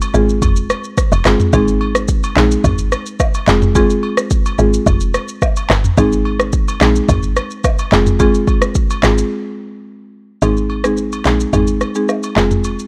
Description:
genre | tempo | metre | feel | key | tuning
afrobeats | 108 BPM | 4/4 | straight | Ab major | A4 = 440 Hz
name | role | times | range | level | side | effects
afro-pop drum kit | drums | 0.0-12.9 s | handclaps, kick drum, rim click, shaker, toms | -18 LUFS | equal | none
agogo bells and woodblock | percussion | 0.0-12.8 s | none | -30 LUFS | equal | none
buzzing marimba with medium mallets | accompaniment | 0.1-12.6 s | Ab3 to Ab4 | -20 LUFS | equal | none
woody log drum bass | bass | 0.1-12.8 s | F1 to Bb1 | -18 LUFS | equal | none
room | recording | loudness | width
little or no reverb | dry, gritty hardware recording | -15 LUFS | mono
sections
0.0-10.4 A section; 10.4-12.9 B section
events
break 9.3-10.4; kick muted 10.4-12.9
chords
0.0 Fm; 1.5 Ab; 3.5 Fm; 6.0 Ab; 7.9 Fm; 10.4 Ab; 12.4 Fm

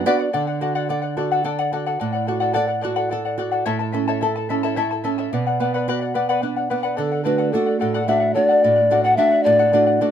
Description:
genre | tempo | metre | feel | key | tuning
andean folk, Andean ensemble | 72 BPM (dotted quarters) | 6/8 | straight | unclear | A4 = 440 Hz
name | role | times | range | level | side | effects
charango | accompaniment | 0.0-10.1 s | E4 to A5 | -22 LUFS | left 4 dB | none
nylon-string guitar | accompaniment | 0.0-10.1 s | A2 to D5 | -23 LUFS | right 6 dB | none
mellow hollow polished pan flute | melody | 7.0-10.1 s | A4 to F#5 | -16 LUFS | left 2 dB | none
room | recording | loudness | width
moderate studio reverb, RT60 0.6 s | minimal, uncompressed stereo recording | -18 LUFS | side -9 dB against mid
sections
0.3-7.0 A section; 7.0-10.1 B section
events
nylon-string guitar fill 0.0-0.3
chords
0.3 D; 3.7 A; 5.3 Bm; 7.0 D

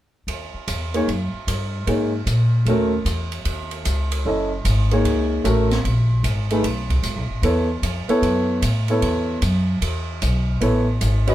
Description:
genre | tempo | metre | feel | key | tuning
modal jazz | 151 BPM | 4/4 | swing 65% on 8ths | G# phrygian | A4 = 440 Hz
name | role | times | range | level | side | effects
upright bass | bass | 0.3-11.3 s | F#1 to A#2 | -21 LUFS | equal | none
open jazz drum kit | drums | 0.3-11.3 s | hi-hat, kick drum, ride cymbal, snare drum | -28 LUFS | right 2 dB | none
warm baby grand piano | accompaniment | 0.9-11.3 s | A3 to D#5 | -20 LUFS | equal | none
room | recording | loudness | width
moderate small room reverb, RT60 0.5 s | band playing live in one room | -18 LUFS | side -13 dB against mid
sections
0.3-11.3 A section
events
none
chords
0.3 G#9sus4; 6.6 B9sus4

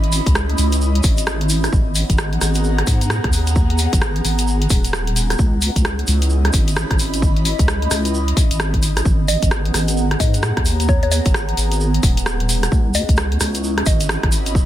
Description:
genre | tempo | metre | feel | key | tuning
UK garage, two-step garage | 131 BPM | 4/4 | swing 62% on 16ths | G# minor | A4 = 441 Hz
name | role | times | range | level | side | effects
deep soft wobble bass | bass | 0.0-14.7 s | D#1 to G#2 | -19 LUFS | equal | chorus, sidechain pumping
house drum kit | drums | 0.0-14.5 s | hi-hat, rim click | -23 LUFS | equal | soft clipping on snare
airy breathy pad | texture | 0.0-14.7 s | B3 to B5 | -25 LUFS | right 1 dB | chorus, phaser, sidechain pumping
tube shaker | percussion | 0.1-14.7 s | none | -27 LUFS | right 4 dB | none
electronic kick drum | drums | 0.3-14.7 s | none | -17 LUFS | equal | none
mallet-like synth pluck | melody | 9.3-14.1 s | C#5 to D#5 | -27 LUFS | equal | chorus, phaser, dub echo
room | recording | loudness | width
light reverb | dense, heavily limited modern master | -15 LUFS | side -13 dB against mid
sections
0.0-14.7 A section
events
none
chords
0.0 C#m9; 1.7 G#m9; 5.4 C#m9; 9.1 G#m9; 12.7 C#m9

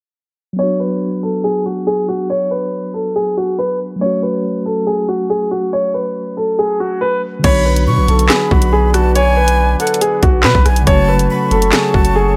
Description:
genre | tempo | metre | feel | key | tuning
hip hop, drill | 140 BPM | 4/4 | half-time | unclear | A4 = 442 Hz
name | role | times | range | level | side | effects
mellow tine electric piano | accompaniment | 0.5-12.4 s | C#3 to F#4 | -23 LUFS | equal | none
dark grand piano | melody | 0.6-12.3 s | F#4 to C#5 | -19 LUFS | equal | none
breathy reedy jazz flute | second line | 7.4-12.3 s | F#5 to C#6 | -22 LUFS | equal | digital delay
warbly tape-like pad | sustained chords | 7.9-12.4 s | A4 to C#6 | -29 LUFS | equal | chorus, built-in reverb
long sustained 808-style bass | bass | 7.4-12.4 s | F#1 to B2 | -17 LUFS | equal | none
drill drum kit | drums | 7.4-12.1 s | crash cymbal, handclaps, hi-hat, kick drum, rim click, snare drum | -17 LUFS | equal | overdrive
room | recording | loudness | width
light reverb | low-pass filter | -15 LUFS | mono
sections
0.6-7.4 A section; 7.4-12.4 B section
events
filter sweep 0.6-7.4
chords
0.6 Bm; 4.0 F#m; 7.4 Bm; 10.9 F#m

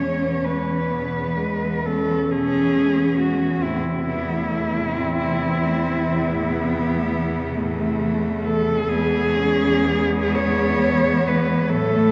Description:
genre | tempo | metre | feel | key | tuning
classical, lyrical piece for cello ensemble | 39-46 BPM (dotted quarters) | 12/8 | rubato | E major | A4 = 440 Hz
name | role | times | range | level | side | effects
warm cello | melody | 0.0-12.1 s | E4 to C#5 | -26 LUFS | equal | none
rich cello | second line | 0.0-12.1 s | A2 to B3 | -31 LUFS | equal | none
warm cello | accompaniment | 0.0-12.1 s | G#3 to C#4 | -26 LUFS | equal | none
clear cello | bass | 0.0-12.1 s | E2 to A2 | -27 LUFS | equal | none
room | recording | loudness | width
wet cathedral reverb, RT60 4.1 s | worn, warbling old tape, cassette tape, warbly pitch drift | -21 LUFS | mono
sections
0.0-12.1 A section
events
none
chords
0.0 E; 3.6 Am/E; 8.9 E

